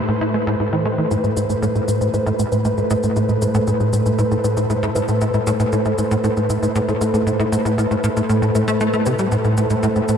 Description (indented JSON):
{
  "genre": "ambient, sequencer-driven space music",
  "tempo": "117 BPM",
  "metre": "4/4",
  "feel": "straight",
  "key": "A minor",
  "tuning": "A4 = 439 Hz",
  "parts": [
    { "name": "sweeping resonant pad", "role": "sustained chords", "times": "0.0-10.2 s", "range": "A2 to C5", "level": "-20 LUFS", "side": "equal", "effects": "wide subtle chorus, shimmer reverb" },
    { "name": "tight sequencer bass", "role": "riff", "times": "0.1-10.2 s", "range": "A2 to E4", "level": "-18 LUFS", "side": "equal", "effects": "lush chorus, tape echo" },
    { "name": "shaker and bongos", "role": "percussion", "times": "1.1-10.2 s", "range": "none", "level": "-31 LUFS", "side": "left 4 dB", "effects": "tape echo" }
  ],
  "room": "wet huge ambient reverb, RT60 7.3 s",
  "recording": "none",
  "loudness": "-16 LUFS",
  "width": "side -8 dB against mid",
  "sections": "0.0-10.2 A section",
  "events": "none",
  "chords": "0.0 Am7",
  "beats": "0.09 0.60 | 1.11 1.62 2.14 2.65 | 3.16 3.67 4.19 4.70 | 5.21 5.73 6.24 6.75 | 7.26 7.78 8.29 8.80 | 9.32 9.83"
}